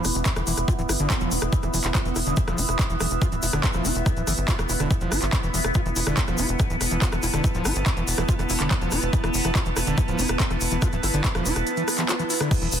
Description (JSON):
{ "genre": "psychedelic trance", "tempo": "142 BPM", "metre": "4/4", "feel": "straight", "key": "unclear", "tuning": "A4 = 442 Hz", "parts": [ { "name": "overtone-sweeping drone", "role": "sustained chords", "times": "0.0-12.8 s", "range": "B3", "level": "-30 LUFS", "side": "right 1 dB", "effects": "chorus, built-in reverb, phaser, sidechain pumping" }, { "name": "screaming distorted acid line", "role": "riff", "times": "0.0-12.7 s", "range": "D3 to F4", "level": "-30 LUFS", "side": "moving between left 4 dB and right 5 dB", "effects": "distortion, chorus, auto-pan, cassette tape, sidechain pumping, dub echo" }, { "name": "tight sequencer bass", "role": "bass", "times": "0.0-12.8 s", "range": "D1 to G1", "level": "-27 LUFS", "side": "equal", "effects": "none" }, { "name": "techno drum kit", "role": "drums", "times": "0.0-12.8 s", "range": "crash cymbal, handclaps, hi-hat, rim click", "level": "-27 LUFS", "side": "equal", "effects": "overdrive, small room reverb" }, { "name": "egg shaker", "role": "percussion", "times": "0.0-12.8 s", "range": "none", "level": "-35 LUFS", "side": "left 3 dB", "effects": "none" }, { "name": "airy breathy pad", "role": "texture", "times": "0.0-12.8 s", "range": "E4 to A5", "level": "-32 LUFS", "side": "right 2 dB", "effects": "chorus, sidechain pumping" }, { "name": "electronic kick drum", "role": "drums", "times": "0.3-12.6 s", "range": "none", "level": "-23 LUFS", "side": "equal", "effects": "small room reverb" } ], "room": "light reverb", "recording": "dense, heavily limited modern master", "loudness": "-21 LUFS", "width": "side -9 dB against mid", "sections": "0.0-12.8 A section", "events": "none", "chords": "0.0 E5" }